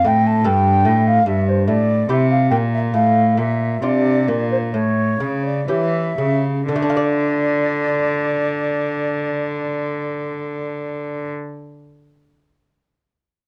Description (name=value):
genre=classical, baroque-style sonata movement with continuo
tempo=59-76 BPM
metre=4/4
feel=rubato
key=D minor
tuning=A4 = 440 Hz
part: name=mellow baroque flute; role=melody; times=0.0-11.3 s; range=C5 to A5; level=-23 LUFS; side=equal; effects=none
part: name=lute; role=accompaniment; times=0.0-11.6 s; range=G2 to D5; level=-26 LUFS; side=equal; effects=none
part: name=warm cello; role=bass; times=0.0-11.3 s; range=G2 to E3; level=-22 LUFS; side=equal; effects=none
room=light reverb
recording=dark, warm production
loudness=-19 LUFS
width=mono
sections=0.0-6.7 A section; 6.7-10.7 B section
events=slowing down 0.0-6.7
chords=0.0 D5; 1.3 Edim/G; 2.9 Dm/A; 4.7 A7; 6.7 Dm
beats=0.45 1.26 2.09 | 2.94 3.83 4.74 5.69 | 6.69 7.70 8.71 9.71